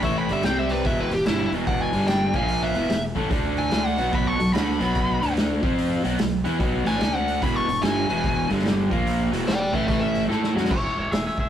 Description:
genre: blues rock power trio and southern rock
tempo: 146 BPM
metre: 4/4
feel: swing 64% on 8ths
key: unclear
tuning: A4 = 438 Hz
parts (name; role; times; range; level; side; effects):
- biting lead guitar; melody; 0.0-10.2 s; E4 to C#6; -26 LUFS; left 1 dB; overdrive
- lightly driven lead guitar; second line; 0.0-11.5 s; B2 to E5; -33 LUFS; equal; none
- crunchy overdriven guitar; riff; 0.0-10.7 s; E2 to A4; -24 LUFS; equal; none
- fuzz fingered electric bass; bass; 0.0-11.5 s; E1 to A2; -30 LUFS; equal; overdrive
- vintage drum kit; drums; 0.0-11.4 s; crash cymbal, hi-hat, kick drum, snare drum; -27 LUFS; equal; none
room: moderate stone room reverb, RT60 1.3 s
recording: rough rehearsal-room recording, warm saturation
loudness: -20 LUFS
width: side -10 dB against mid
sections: 0.0-10.7 A section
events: drum fill 10.3-10.7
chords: 0.4 C5; 0.9 E5; 1.9 G5; 2.3 A#5; 2.7 E5; 3.3 D5; 3.7 Bm7; 5.2 D5; 5.6 F5; 6.0 B5; 7.0 D5; 7.4 E7; 8.4 G5; 8.9 A#5; 9.3 E5; 9.9 A5; 10.3 F#m7; 10.7 E

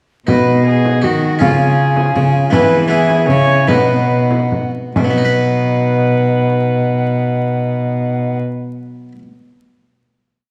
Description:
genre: classical, renaissance-style consort dance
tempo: 135-162 BPM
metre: 3/4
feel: straight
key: B major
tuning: A4 = 439 Hz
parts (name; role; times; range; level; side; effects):
- mellow tenor recorder; melody; 0.3-8.4 s; D#5 to G#5; -26 LUFS; equal; none
- rich viola; second line; 0.3-8.4 s; E#4 to C#5; -21 LUFS; equal; none
- harpsichord; accompaniment; 0.3-9.2 s; B2 to B4; -23 LUFS; equal; none
- mellow bassoon; accompaniment; 0.3-8.4 s; D#4 to F#4; -24 LUFS; equal; none
- rich cello; bass; 0.3-8.4 s; B2 to E3; -18 LUFS; equal; none
- frame drum; percussion; 0.3-5.2 s; none; -22 LUFS; equal; none
room: wet recital hall reverb, RT60 1.7 s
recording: vinyl crackle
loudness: -14 LUFS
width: mono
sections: 0.3-5.0 A section; 5.0-7.6 final chord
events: slowing down 2.0-5.0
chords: 0.3 B; 1.4 C#; 2.5 E; 3.7 B

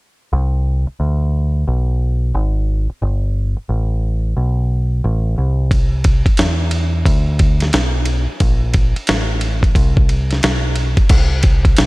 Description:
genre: hip hop, jazz-hop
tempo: 89 BPM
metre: 4/4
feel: swing 63% on 16ths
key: C major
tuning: A4 = 441 Hz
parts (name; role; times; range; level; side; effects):
- deep dub picked electric bass; bass; 0.3-11.9 s; G1 to E2; -16 LUFS; equal; none
- dusty soul sampler-style drum kit; drums; 5.7-11.9 s; crash cymbal, hi-hat, kick drum, ride cymbal, snare drum; -14 LUFS; equal; none
room: little or no reverb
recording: none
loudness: -14 LUFS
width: side -22 dB against mid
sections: 0.3-11.1 A section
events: none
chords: none

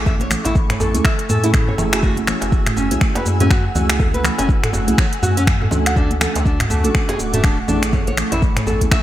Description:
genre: afro house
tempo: 122 BPM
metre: 4/4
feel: swing 59% on 16ths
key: F# minor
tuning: A4 = 437 Hz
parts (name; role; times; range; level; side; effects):
- ethereal airy pad; sustained chords; 0.0-9.0 s; A3 to E6; -26 LUFS; right 1 dB; ensemble chorus, built-in reverb, sidechain pumping
- mellow tine electric piano; stabs; 0.0-8.9 s; A3 to A4; -25 LUFS; right 2 dB; analog chorus, sidechain pumping, digital delay
- warm sub bass; bass; 0.0-8.9 s; D1 to A2; -22 LUFS; equal; sidechain pumping
- nylon-string guitar; arpeggios; 0.1-9.0 s; A3 to A5; -24 LUFS; equal; vintage 12-bit sampler grit, sidechain pumping, digital delay
- afro-pop drum kit; drums; 0.1-9.0 s; finger snaps, hi-hat, shaker, toms; -22 LUFS; equal; gated reverb
- electronic kick drum; drums; 0.1-9.0 s; none; -17 LUFS; equal; none
- djembe; percussion; 0.1-8.8 s; none; -28 LUFS; right 1 dB; none
- congas; percussion; 0.2-9.0 s; none; -28 LUFS; left 1 dB; none
room: light reverb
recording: bright 1980s-style digital production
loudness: -15 LUFS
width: side -13 dB against mid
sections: 0.0-9.0 A section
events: none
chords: 0.1 Amaj7; 2.0 F#m9; 6.0 Dmaj7; 7.9 Amaj7

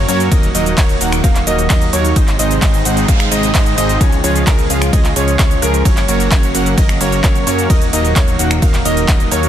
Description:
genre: EDM, festival progressive house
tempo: 130 BPM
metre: 4/4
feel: straight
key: unclear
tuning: A4 = 440 Hz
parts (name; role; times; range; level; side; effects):
- lush unison pad; sustained chords; 0.0-9.5 s; C3 to Gb4; -22 LUFS; equal; chorus, sidechain pumping
- clear baby grand piano; arpeggios; 0.0-9.5 s; Bb4 to Gb5; -22 LUFS; equal; sidechain pumping, dub echo
- supersaw stab; riff; 0.0-9.5 s; F3 to Gb5; -18 LUFS; right 2 dB; sidechain pumping, dub echo
- fat analog bass; bass; 0.0-9.5 s; Eb1 to Ab2; -19 LUFS; equal; sidechain pumping
- big-room dance drum kit; drums; 0.1-9.5 s; finger snaps, handclaps, hi-hat, ride cymbal, shaker; -20 LUFS; right 1 dB; overdrive, soft clipping on snare
- electronic kick drum; drums; 0.3-9.2 s; none; -13 LUFS; equal; none
- noise sweep; sound effects; 2.6-4.0 s; none; -27 LUFS; right 1 dB; none
room: digital ambience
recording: dense, heavily limited modern master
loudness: -11 LUFS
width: side -10 dB against mid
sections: 0.0-9.5 A section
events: noise sweep 2.6-4.0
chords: 0.3 Ebm; 2.2 Ab; 4.0 Db; 5.9 Gb; 7.7 Ebm

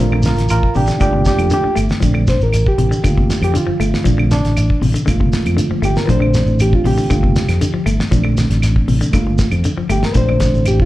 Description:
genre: afrobeat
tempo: 118 BPM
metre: 4/4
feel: straight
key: G minor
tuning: A4 = 438 Hz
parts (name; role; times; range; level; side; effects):
- reed electric piano; accompaniment; 0.0-10.9 s; A3 to C5; -19 LUFS; right 1 dB; phaser, slapback echo
- semi-hollow electric guitar; arpeggios; 0.0-10.5 s; C3 to A3; -21 LUFS; left 3 dB; harmonic tremolo
- fingered electric bass; bass; 0.0-10.8 s; G1 to F2; -16 LUFS; equal; none
- damped 70s drum kit; drums; 0.0-10.9 s; hi-hat, kick drum, snare drum; -18 LUFS; equal; none
- claves; percussion; 0.1-10.8 s; none; -28 LUFS; right 2 dB; none
- shekere; percussion; 0.2-10.8 s; none; -23 LUFS; equal; slapback echo
room: small room ambience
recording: live gig heard through the venue's PA, club reverb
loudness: -13 LUFS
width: side -16 dB against mid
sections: 0.0-10.9 A section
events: reed electric piano solo 0.0-10.9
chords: 0.0 Bbmaj9; 1.0 Gm9; 2.0 Bbmaj9; 3.0 Gm9; 4.1 Bbmaj9; 5.1 Gm9; 6.1 Bbmaj9; 7.1 Gm9; 8.1 Bbmaj9; 9.1 Gm9; 10.2 Bbmaj9

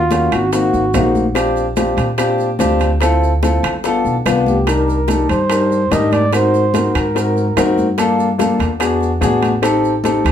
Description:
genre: Afro-Cuban jazz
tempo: 145 BPM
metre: 4/4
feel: straight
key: G minor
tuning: A4 = 440 Hz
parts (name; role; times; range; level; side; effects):
- breathy trumpet; melody; 0.0-1.1, 4.5-7.8 s; F4 to Eb5; -18 LUFS; right 2 dB; none
- upright bass; bass; 0.0-10.3 s; G1 to Bb2; -19 LUFS; equal; none
- warm grand piano; accompaniment; 0.1-10.3 s; Bb3 to B4; -16 LUFS; left 2 dB; none
- bongos; percussion; 0.1-10.3 s; none; -26 LUFS; left 7 dB; none
- congas; percussion; 0.1-10.3 s; none; -24 LUFS; equal; none
- maracas; percussion; 0.1-10.3 s; none; -34 LUFS; right 4 dB; none
- timbales; percussion; 0.1-10.3 s; none; -25 LUFS; right 6 dB; none
- claves; percussion; 0.3-10.3 s; none; -32 LUFS; right 5 dB; none
room: wet studio reverb, RT60 0.5 s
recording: band playing live in one room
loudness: -13 LUFS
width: side -9 dB against mid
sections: 0.0-10.3 A section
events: none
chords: 0.0 Ebm7; 0.5 Ab9; 1.4 Bb6; 3.0 Dm7; 3.8 G7; 4.7 Cm7; 6.3 Ab9; 8.0 Gm7; 8.8 E7; 9.6 Am7b5

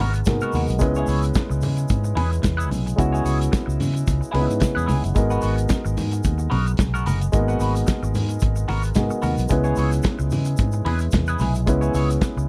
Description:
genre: disco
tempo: 110 BPM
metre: 4/4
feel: swing 56% on 16ths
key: unclear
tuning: A4 = 440 Hz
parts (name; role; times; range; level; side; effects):
- twangy electric guitar; accompaniment; 0.0-12.4 s; B3 to C#5; -31 LUFS; equal; wah, subtle chorus
- warm concert grand piano; accompaniment; 0.0-12.5 s; G#3 to B4; -28 LUFS; equal; none
- fingered electric bass; bass; 0.0-12.5 s; F#1 to C#3; -24 LUFS; equal; none
- warm soul drum kit; drums; 0.0-12.4 s; hi-hat, kick drum, snare drum; -26 LUFS; equal; none
- congas; percussion; 0.0-12.4 s; none; -32 LUFS; equal; none
- egg shaker; percussion; 0.1-12.5 s; none; -44 LUFS; equal; none
room: small room reverb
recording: dry, close 1970s-style studio recording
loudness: -21 LUFS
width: mono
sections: 0.0-12.5 A section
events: none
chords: 0.0 G#m9; 0.8 C#m7; 5.2 G#m9; 9.5 C#m7

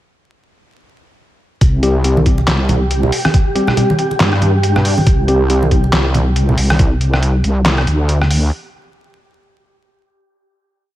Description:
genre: deep dubstep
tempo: 139 BPM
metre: 4/4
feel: swing 58% on 16ths, half-time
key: unclear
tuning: A4 = 440 Hz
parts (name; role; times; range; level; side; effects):
- wobble bass; bass; 1.6-8.5 s; C2 to G2; -14 LUFS; equal; chorus
- electronic kick drum; drums; 1.6-6.9 s; none; -13 LUFS; equal; none
- trip hop sampler-style drum kit; drums; 1.6-8.4 s; handclaps, hi-hat, rim click, snare drum; -18 LUFS; equal; none
- wind-like tuned noise texture; texture; 2.4-6.8 s; G4; -23 LUFS; right 4 dB; built-in reverb
- mellow tine electric piano; stabs; 1.8-5.6 s; G3 to G4; -20 LUFS; left 2 dB; vintage 12-bit sampler grit, dub echo
- congas; percussion; 2.2-6.8 s; none; -19 LUFS; right 1 dB; none
room: light reverb, digital ambience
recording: vinyl crackle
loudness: -12 LUFS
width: side -14 dB against mid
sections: 1.6-8.5 drop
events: drop 1.6-8.5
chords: 1.6 C5

